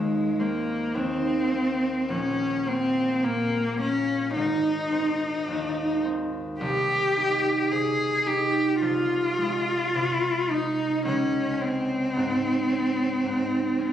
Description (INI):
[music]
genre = classical, romantic duo for cello and harp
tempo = 54 BPM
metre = 4/4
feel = rubato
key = Ab major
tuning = A4 = 440 Hz
[part]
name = clear cello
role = melody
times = 0.0-13.9 s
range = Ab3 to Ab4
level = -24 LUFS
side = left 1 dB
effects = none
[part]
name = concert harp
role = accompaniment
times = 0.0-13.9 s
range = Ab1 to Ab4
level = -28 LUFS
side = right 3 dB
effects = none
[sound]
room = moderate scoring stage reverb, RT60 1.9 s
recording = recorded on a phone in the room, club reverb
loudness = -23 LUFS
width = side -10 dB against mid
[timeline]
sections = 0.0-13.9 A section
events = none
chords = 0.0 Ab; 2.1 N.C.; 4.4 Ab; 6.6 Ab/C; 11.1 Db5